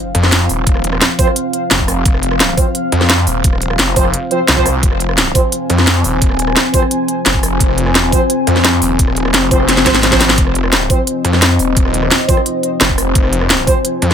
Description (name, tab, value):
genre	dark technical drum and bass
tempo	173 BPM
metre	4/4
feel	straight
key	F minor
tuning	A4 = 440 Hz
part	deep dark ambient pad	sustained chords	0.0-14.1 s	F3 to Ab5	-18 LUFS	left 2 dB	chorus, built-in reverb, sidechain pumping
part	sub drop	sound effects	0.0-0.7 s	none	-31 LUFS	equal	none
part	snarling distorted saw bass	bass	0.1-14.1 s	Eb1 to F2	-16 LUFS	equal	distortion, overdrive, sidechain pumping
part	drum and bass drum kit	drums	0.1-14.1 s	hi-hat, rim click, snare drum	-14 LUFS	equal	none
part	electronic kick drum	drums	0.7-13.7 s	none	-14 LUFS	equal	none
part	warm brass ensemble	stabs	1.2-13.8 s	F3 to C5	-19 LUFS	right 3 dB	ping-pong delay
room	light reverb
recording	none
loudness	-11 LUFS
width	side -8 dB against mid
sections	0.0-14.1 A section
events	impact 0.0-0.7; drum fill 9.7-10.4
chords	0.0 F5